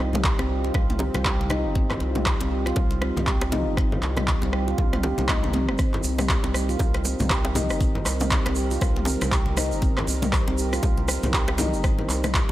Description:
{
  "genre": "afro house",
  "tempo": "119 BPM",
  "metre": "4/4",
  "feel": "swing 59% on 16ths",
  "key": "C minor",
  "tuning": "A4 = 440 Hz",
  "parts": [
    { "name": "dark analog pad", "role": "sustained chords", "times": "0.0-12.5 s", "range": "G3 to Bb4", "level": "-33 LUFS", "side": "right 1 dB", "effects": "chorus, sidechain pumping" },
    { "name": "round analog bass", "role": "bass", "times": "0.0-12.5 s", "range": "G1 to C2", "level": "-28 LUFS", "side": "equal", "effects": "sidechain pumping" },
    { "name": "handpan", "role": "arpeggios", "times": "0.1-12.5 s", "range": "G3 to G4", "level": "-29 LUFS", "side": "equal", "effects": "sidechain pumping, digital delay" },
    { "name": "deep house drum kit", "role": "drums", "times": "0.1-12.5 s", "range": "handclaps, rim click, toms", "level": "-28 LUFS", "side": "equal", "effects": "overdrive, studio reverb" },
    { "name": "bongos", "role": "percussion", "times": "0.1-12.5 s", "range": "none", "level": "-32 LUFS", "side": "equal", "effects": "none" },
    { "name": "congas", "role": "percussion", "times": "0.1-12.5 s", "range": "none", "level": "-32 LUFS", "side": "left 2 dB", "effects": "none" },
    { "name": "electronic kick drum", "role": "drums", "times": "0.2-12.5 s", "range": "none", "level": "-24 LUFS", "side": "equal", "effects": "studio reverb" },
    { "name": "tube shaker", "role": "percussion", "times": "5.8-12.5 s", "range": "none", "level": "-33 LUFS", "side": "right 4 dB", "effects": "none" }
  ],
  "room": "small room ambience",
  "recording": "none",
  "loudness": "-21 LUFS",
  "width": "side -15 dB against mid",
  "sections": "0.0-12.5 A section",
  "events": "drum fill 4.8-5.8",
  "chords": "0.0 Cm7",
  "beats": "0.24 0.75 1.25 | 1.76 2.26 2.77 3.27 | 3.77 4.28 4.78 5.29 | 5.79 6.29 6.80 7.30 | 7.81 8.31 8.81 9.32 | 9.82 10.33 10.83 11.34 | 11.84 12.35"
}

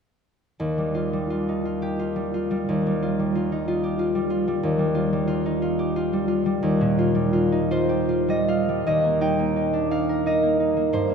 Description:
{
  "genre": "classical, solo harp piece",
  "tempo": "49-63 BPM (dotted quarters)",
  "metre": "6/8",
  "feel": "rubato",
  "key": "Eb major",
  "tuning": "A4 = 441 Hz",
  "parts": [
    { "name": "concert harp", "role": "solo", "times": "0.6-11.1 s", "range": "Eb2 to G5", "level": "-20 LUFS", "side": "equal", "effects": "none" }
  ],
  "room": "wet cathedral reverb, RT60 5.0 s",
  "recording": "minimal, uncompressed stereo recording",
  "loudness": "-21 LUFS",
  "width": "side -6 dB against mid",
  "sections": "0.6-8.9 A section; 8.9-11.1 B section",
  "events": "none",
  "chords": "0.6 Ebadd9; 4.6 Eb69; 8.9 Eb6",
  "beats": "| 0.60 1.65 | 2.67 3.67 | 4.63 5.61 | 6.62 7.69 | 8.86 9.90 | 10.92"
}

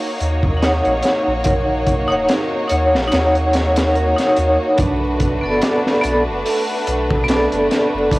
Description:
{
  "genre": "trip hop",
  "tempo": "72 BPM",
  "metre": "4/4",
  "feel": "swing 56% on 16ths",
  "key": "unclear",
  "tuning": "A4 = 440 Hz",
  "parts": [
    { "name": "warm symphonic violin section", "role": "sustained chords", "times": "0.0-8.2 s", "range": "A3 to Db5", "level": "-22 LUFS", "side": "equal", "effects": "cassette tape" },
    { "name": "concert harp", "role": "arpeggios", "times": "0.0-8.2 s", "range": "D4 to Eb5", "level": "-27 LUFS", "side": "right 5 dB", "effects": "vintage 12-bit sampler grit, cassette tape, tape echo" },
    { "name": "soft dub sub bass", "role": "bass", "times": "0.2-8.2 s", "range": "Eb1 to Eb2", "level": "-22 LUFS", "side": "equal", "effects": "none" },
    { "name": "crunchy breakbeat drum kit", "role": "drums", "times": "0.2-8.2 s", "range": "hi-hat, kick drum, snare drum", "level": "-21 LUFS", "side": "equal", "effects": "cassette tape" },
    { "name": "vibraphone with hard mallets", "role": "accompaniment", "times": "0.6-8.2 s", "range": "B3 to Gb5", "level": "-18 LUFS", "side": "equal", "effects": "tremolo, cassette tape, tape echo" }
  ],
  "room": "light reverb",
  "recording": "home recording on cassette, vinyl crackle",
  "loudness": "-14 LUFS",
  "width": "side -20 dB against mid",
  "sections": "0.0-8.2 A section",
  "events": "none",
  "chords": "0.0 Ebm7; 4.8 Bm7",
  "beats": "0.62 | 1.45 2.29 3.12 3.95 | 4.79 5.62 6.45 7.29 | 8.12"
}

